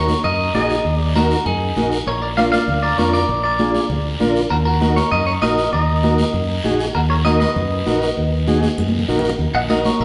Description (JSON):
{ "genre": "latin, cumbia", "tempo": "197 BPM", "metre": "4/4", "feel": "straight", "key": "Eb harmonic minor", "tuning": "A4 = 440 Hz", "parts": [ { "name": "clean electric guitar", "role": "melody", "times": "0.0-10.0 s", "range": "Eb4 to Gb5", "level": "-23 LUFS", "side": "equal", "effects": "spring reverb" }, { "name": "overdriven combo organ", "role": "accompaniment", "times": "0.0-9.9 s", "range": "D4 to Bb4", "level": "-24 LUFS", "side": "equal", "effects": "none" }, { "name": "fingered electric bass", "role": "bass", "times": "0.0-10.0 s", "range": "Bb1 to Gb2", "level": "-23 LUFS", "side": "equal", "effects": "none" }, { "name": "congas", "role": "percussion", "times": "0.1-10.0 s", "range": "none", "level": "-26 LUFS", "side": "equal", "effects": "none" }, { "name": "guiro", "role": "percussion", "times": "0.1-10.0 s", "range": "none", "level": "-32 LUFS", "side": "equal", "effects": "none" } ], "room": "wet large studio reverb, RT60 1.4 s", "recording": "band playing live in one room, nothing above 11.0 kHz", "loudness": "-18 LUFS", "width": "mono", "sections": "0.0-9.4 A section", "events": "drum fill 8.8-9.4", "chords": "0.0 Ebm; 2.1 Bb7; 4.5 Ebm" }